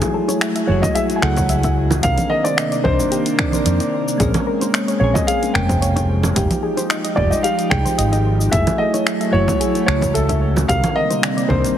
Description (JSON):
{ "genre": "sunset chillout", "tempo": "111 BPM", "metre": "4/4", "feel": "straight", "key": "unclear", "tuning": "A4 = 440 Hz", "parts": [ { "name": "soft electric-piano-like synth keys", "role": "accompaniment", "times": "0.0-11.8 s", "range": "D3 to D5", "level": "-23 LUFS", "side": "equal", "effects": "chorus, auto-pan, ping-pong delay" }, { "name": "airy breathy pad", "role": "sustained chords", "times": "0.0-11.8 s", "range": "C3 to Ab4", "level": "-24 LUFS", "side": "equal", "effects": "chorus" }, { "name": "deep house drum kit", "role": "drums", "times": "0.0-11.7 s", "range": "cabasa, congas, finger snaps, hi-hat", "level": "-23 LUFS", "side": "equal", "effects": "none" }, { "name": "congas and bongos", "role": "percussion", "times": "0.0-11.7 s", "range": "none", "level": "-29 LUFS", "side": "right 2 dB", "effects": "none" }, { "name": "soft round pluck", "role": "arpeggios", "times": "0.1-11.5 s", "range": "G4 to Fb5", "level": "-27 LUFS", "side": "left 3 dB", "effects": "chorus, ping-pong delay" }, { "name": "dark concert grand piano", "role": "melody", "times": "0.7-11.8 s", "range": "A4 to Ab5", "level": "-22 LUFS", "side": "right 1 dB", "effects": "tape echo" }, { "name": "fretless electric bass", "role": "bass", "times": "0.7-11.6 s", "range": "F1 to F2", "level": "-19 LUFS", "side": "equal", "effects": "none" }, { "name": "electronic kick drum", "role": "drums", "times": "0.8-11.6 s", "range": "none", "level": "-23 LUFS", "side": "equal", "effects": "overdrive" } ], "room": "moderate concert hall reverb, RT60 2.0 s", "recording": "heavily compressed radio sound, multiband compression", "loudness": "-15 LUFS", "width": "side -10 dB against mid", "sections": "0.0-11.8 A section", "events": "none", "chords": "0.0 Gbm9; 2.0 Cm9; 4.2 Bbm9; 6.4 Fm9; 8.5 Gbm9; 10.7 Cm9", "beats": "0.42 0.96 1.50 | 2.04 2.58 3.12 3.66 | 4.20 4.74 5.28 5.82 | 6.36 6.90 7.44 7.98 | 8.53 9.06 9.61 10.15 | 10.69 11.23 11.77" }